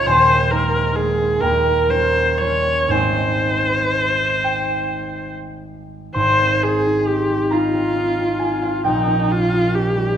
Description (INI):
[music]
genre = classical, romantic duo for viola and harp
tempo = 33-46 BPM (dotted quarters)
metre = 6/8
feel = rubato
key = Ab major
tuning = A4 = 443 Hz
[part]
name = warm viola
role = melody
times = 0.0-10.2 s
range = Eb4 to Db5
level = -19 LUFS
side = equal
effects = none
[part]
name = concert harp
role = accompaniment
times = 0.0-10.2 s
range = Eb1 to C6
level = -19 LUFS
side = equal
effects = none
[sound]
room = wet recital hall reverb, RT60 1.4 s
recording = minimal, uncompressed stereo recording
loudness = -16 LUFS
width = side -9 dB against mid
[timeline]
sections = 0.0-6.2 A section; 6.2-10.2 A section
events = none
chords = 0.1 Ab/Eb; 1.4 Eb9; 2.9 Ab; 8.9 Eb7/Bb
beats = | 0.08 1.41 | 2.92 4.46 | 6.15 7.52 | 8.87